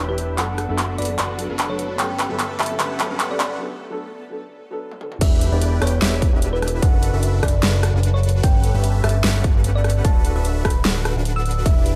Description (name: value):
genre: future bass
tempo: 149 BPM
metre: 4/4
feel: half-time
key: D major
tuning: A4 = 439 Hz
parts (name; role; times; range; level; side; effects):
- shimmering ambient pad; sustained chords; 0.0-3.6 s; A3 to A4; -39 LUFS; equal; chorus, built-in reverb, phaser, sidechain pumping
- supersaw chords; riff; 0.0-11.9 s; C#4 to B5; -31 LUFS; equal; sidechain pumping, low-pass filter
- fat analog bass; bass; 0.0-11.9 s; D1 to G1; -23 LUFS; equal; sidechain pumping
- thumb-piano-like synth pluck; melody; 0.1-12.0 s; B4 to E6; -32 LUFS; equal; chorus, sidechain pumping, tape echo
- felt-muted upright piano; accompaniment; 0.1-5.1 s; E3 to A4; -34 LUFS; equal; sidechain pumping, digital delay
- big-room dance drum kit; drums; 0.2-11.9 s; crash cymbal, handclaps, hi-hat, rim click, snare drum, toms; -26 LUFS; equal; none
- electronic kick drum; drums; 5.2-11.7 s; none; -20 LUFS; equal; none
room: light reverb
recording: high-pass filter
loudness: -20 LUFS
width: mono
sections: 0.0-5.2 A section; 5.2-12.0 B section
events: build-up 0.0-5.2; drum fill 0.0-3.6, 4.9-5.2; filter sweep on supersaw synth 0.0-5.2; break 3.6-5.2; drop 5.2-12.0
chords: 0.4 D6/F#; 2.0 Gmaj9#11; 3.6 D6; 5.2 Em7; 6.8 D6/F#; 8.4 Gmaj9#11; 10.0 D6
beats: | 0.38 0.79 1.19 1.59 | 1.99 2.40 2.80 3.20 | 3.60 4.01 4.41 4.81 | 5.21 5.62 6.02 6.42 | 6.83 7.23 7.63 8.03 | 8.44 8.84 9.24 9.64 | 10.05 10.45 10.85 11.26 | 11.66